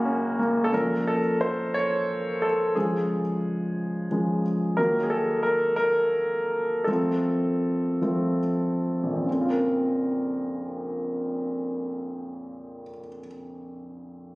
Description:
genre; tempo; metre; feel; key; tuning
pop; 46-59 BPM (dotted quarters); 6/8; straight; Bb harmonic minor; A4 = 440 Hz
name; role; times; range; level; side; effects
clear grand piano; solo; 0.0-14.3 s; Gb1 to Db5; -24 LUFS; equal; none
room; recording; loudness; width
moderate concert hall reverb, RT60 2.0 s; recorded on a phone in the room, studio reverb; -23 LUFS; side -21 dB against mid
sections
0.7-9.3 A section; 9.3-14.3 B section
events
grand piano solo 0.7-9.3; slowing down 4.8-9.3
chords
0.0 Gb; 0.7 Bbm; 2.8 Db; 4.8 Ebm; 6.9 F; 9.3 Bbmadd9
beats
| 0.72 1.74 | 2.75 3.77 | 4.78 5.81 | 6.88 8.02 | 9.27 10.59 | 11.90 13.22

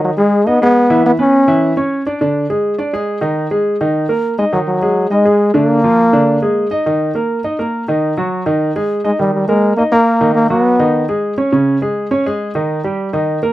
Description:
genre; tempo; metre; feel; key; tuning
latin; 206 BPM; 4/4; straight; G# minor; A4 = 436 Hz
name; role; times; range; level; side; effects
warm trombone; melody; 0.0-1.7, 4.4-6.7, 9.1-11.0 s; F#3 to C#4; -12 LUFS; equal; none
clear grand piano; accompaniment; 0.0-13.5 s; C#3 to D#5; -15 LUFS; right 1 dB; none
room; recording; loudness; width
moderate booth ambience, RT60 0.2 s; dry, close 1970s-style studio recording; -12 LUFS; side -15 dB against mid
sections
0.0-13.5 A section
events
none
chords
0.0 G#m; 1.0 C#m7/E; 2.2 G#5; 3.4 D#sus4; 4.5 G#5; 5.7 A#7; 6.9 D#5; 8.0 G#5; 9.2 D#5; 10.4 G#m7; 11.5 C#sus2; 12.7 D#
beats
0.17 0.46 0.75 | 1.04 1.33 1.63 1.92 | 2.21 2.50 2.79 3.08 | 3.37 3.66 3.95 4.24 | 4.53 4.82 5.11 5.40 | 5.69 5.98 6.27 6.57 | 6.86 7.15 7.44 7.73 | 8.02 8.31 8.61 8.90 | 9.19 9.48 9.77 10.06 | 10.36 10.65 10.94 11.23 | 11.53 11.82 12.11 12.40 | 12.70 12.99 13.28

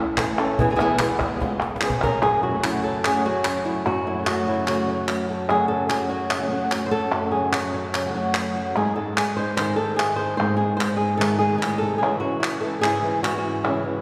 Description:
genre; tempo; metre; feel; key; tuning
flamenco; 147 BPM; 4/4; straight; unclear; A4 = 440 Hz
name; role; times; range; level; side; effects
flamenco guitar; stabs; 0.0-14.0 s; E2 to G#4; -30 LUFS; equal; none
flamenco guitar; melody; 0.2-14.0 s; F#2 to B#4; -25 LUFS; equal; none
cajon; percussion; 0.2-2.1 s; none; -31 LUFS; equal; none
palmas hand claps; percussion; 0.2-13.9 s; none; -30 LUFS; equal; none
room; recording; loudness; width
wet church reverb, RT60 3.1 s; recorded in a church or concert hall; -23 LUFS; mono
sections
0.0-2.2 A section; 2.2-14.0 B section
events
drum fill 1.6-2.2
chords
0.0 A; 0.6 E; 1.4 C#7; 2.2 F#m; 8.8 G#; 12.0 C#m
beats
0.18 | 0.59 1.00 1.41 1.82 | 2.23 2.64 3.05 3.46 | 3.87 4.27 4.68 5.09 | 5.50 5.91 6.32 6.73 | 7.13 7.54 7.95 8.36 | 8.77 9.17 9.58 9.99 | 10.40 10.80 11.21 11.62 | 12.03 12.43 12.84 13.25 | 13.66

